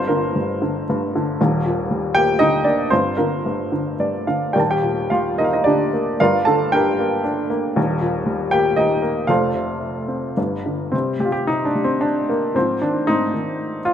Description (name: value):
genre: classical, lyrical solo piano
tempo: 103-121 BPM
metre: 3/4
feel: rubato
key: G minor, C minor from 10.9 s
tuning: A4 = 442 Hz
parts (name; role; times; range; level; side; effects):
- warm upright piano; solo; 0.0-13.9 s; Eb1 to A5; -17 LUFS; equal; none
room: light reverb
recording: none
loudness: -17 LUFS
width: side -9 dB against mid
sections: 0.0-10.9 A section; 10.9-13.9 B section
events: upright piano fill 3.7-4.5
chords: 0.0 Gm7; 1.4 Ebmaj7; 2.9 Gm7; 4.5 Ebmaj7; 6.2 Gm7; 7.8 Eb; 9.3 F; 10.4 G5; 10.9 C5; 12.6 Ab6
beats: 0.35 0.88 | 1.39 1.89 2.40 | 2.91 3.44 3.99 | 4.55 5.11 5.66 | 6.20 6.73 7.25 | 7.77 8.28 8.79 | 9.29 9.81 10.37 | 10.93 11.48 12.03 | 12.55 13.07 13.59